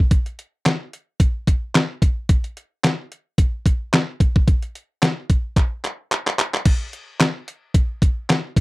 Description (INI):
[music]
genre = funk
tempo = 110 BPM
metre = 4/4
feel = swing 56% on 16ths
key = none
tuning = none
[part]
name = detuned 8-bit digital drum machine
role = drums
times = 0.1-8.6 s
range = crash cymbal, handclaps, hi-hat, kick drum, snare drum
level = -17 LUFS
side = equal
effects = none
[sound]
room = light reverb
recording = dry, close 1970s-style studio recording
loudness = -18 LUFS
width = side -21 dB against mid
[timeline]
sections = 0.0-6.7 A section; 6.7-8.6 B section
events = drum fill 5.6-6.7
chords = none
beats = | 0.11 0.66 1.20 1.75 | 2.29 2.84 3.38 3.93 | 4.47 5.02 5.57 6.11 | 6.66 7.20 7.75 8.29